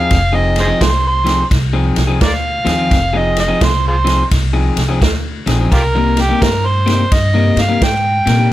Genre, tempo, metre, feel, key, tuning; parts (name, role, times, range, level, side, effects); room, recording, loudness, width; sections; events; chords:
electric blues shuffle; 86 BPM; 4/4; swing 65% on 8ths; C minor; A4 = 440 Hz
overdriven harmonica; melody; 0.0-8.5 s; F4 to G5; -16 LUFS; right 2 dB
electric guitar through a small old amp; riff; 0.0-8.5 s; C3 to Ab4; -18 LUFS; left 3 dB
upright bass; bass; 0.0-8.5 s; F1 to Bb2; -16 LUFS; equal
swinging big-band drum kit; drums; 0.1-8.4 s; kick drum, ride cymbal, snare drum; -18 LUFS; equal
light reverb; -12 LUFS; side -14 dB against mid
0.0-8.5 A section
harmonica solo 0.0-8.5
0.0 Fm7; 5.7 Cm7